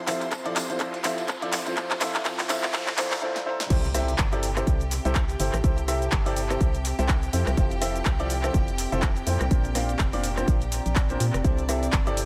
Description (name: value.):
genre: piano house.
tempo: 124 BPM.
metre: 4/4.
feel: swing 58% on 16ths.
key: C mixolydian.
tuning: A4 = 441 Hz.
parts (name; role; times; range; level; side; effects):
clear chamber violin section; sustained chords; 0.0-12.3 s; D4 to C6; -40 LUFS; equal; sidechain pumping.
riser, noise sweep and impact; sound effects; 0.0-5.6 s; none; -41 LUFS; equal; none.
warbly tape-like pad; texture; 0.0-12.3 s; C4 to Bb5; -40 LUFS; equal; none.
warm grand piano; riff; 0.1-12.2 s; Bb2 to F5; -32 LUFS; equal; sidechain pumping, low-pass filter, tape echo.
punchy analog drum machine; drums; 0.1-12.3 s; cabasa, crash cymbal, handclaps, hi-hat, rim click, snare drum; -32 LUFS; equal; tape echo.
tambourine; percussion; 0.1-3.2 s; none; -42 LUFS; equal; tape echo.
electronic kick drum; drums; 0.3-12.0 s; none; -26 LUFS; equal; high-pass filter on kick, high-pass filter on room.
organ-like FM bass; bass; 3.7-12.3 s; F1 to Bb2; -30 LUFS; equal; sidechain pumping.
room: light reverb, digital ambience.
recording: echo-heavy mix, high-pass filter.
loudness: -25 LUFS.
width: mono.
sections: 0.0-3.7 A section; 3.7-12.3 B section.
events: build-up 0.0-3.7; drum fill 0.0-3.2, 3.3-3.7; riser 0.0-3.2; noise sweep 1.8-3.7; drop 3.7-12.3; impact 3.7-5.6.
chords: 0.0 Fmaj7; 1.8 Bbadd9; 3.7 C6; 7.3 Fmaj7; 9.5 Bbadd9; 11.4 C6.